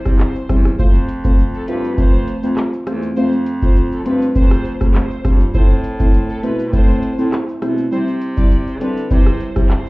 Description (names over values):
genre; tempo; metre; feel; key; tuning
dancehall; 101 BPM; 4/4; straight; unclear; A4 = 440 Hz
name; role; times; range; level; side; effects
dark studio violin section; melody; 0.0-9.9 s; A4 to D5; -30 LUFS; equal; slapback echo
deep mellow chord stab; accompaniment; 0.1-9.7 s; G3 to C5; -19 LUFS; equal; chorus
clear baritone saxophone; bass; 0.1-9.7 s; E2 to D3; -24 LUFS; equal; none
booming analog drum machine; drums; 0.1-9.9 s; handclaps, hi-hat, kick drum, rim click, shaker; -13 LUFS; equal; none
room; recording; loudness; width
digital ambience; heard muffled through a wall, club reverb, EQ; -14 LUFS; side -22 dB against mid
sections
0.0-9.9 A section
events
none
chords
0.0 C; 0.8 F; 5.5 Am; 7.9 C